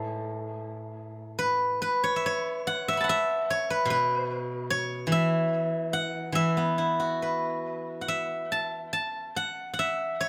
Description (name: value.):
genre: chinese traditional, Chinese solo plucked strings.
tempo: 66-76 BPM.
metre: 2/4.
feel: rubato.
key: unclear.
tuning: A4 = 440 Hz.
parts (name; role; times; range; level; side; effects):
steel-string zither; solo; 0.0-10.3 s; A2 to C#6; -28 LUFS; equal; tape echo.
room: light reverb.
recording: close, detailed microphones.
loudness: -28 LUFS.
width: mono.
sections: 0.0-1.4 A section; 1.4-10.3 B section.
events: none.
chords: none.